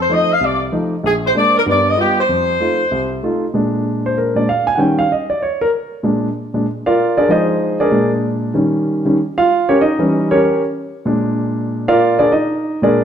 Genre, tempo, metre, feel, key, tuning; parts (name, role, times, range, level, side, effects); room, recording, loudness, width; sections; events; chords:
jazz; 191 BPM; 4/4; swing 62% on 8ths; Bb mixolydian; A4 = 440 Hz
mellow saxophone section; melody; 0.0-3.2 s; G4 to F5; -15 LUFS; left 1 dB
warm baby grand piano; accompaniment; 0.0-13.0 s; Bb1 to Ab5; -14 LUFS; right 1 dB
wet large studio reverb, RT60 1.2 s; -14 LUFS; side -8 dB against mid
0.0-3.5 A section; 3.5-13.0 B section
grand piano solo 3.5-13.0
0.0 F7; 1.0 Bb7; 1.7 G7; 2.3 F7; 3.5 Bb7; 4.8 Eb7; 6.0 Bb7; 7.3 Fm7; 7.9 Bb7; 8.5 Eb7; 9.8 Edim7; 11.1 Bb7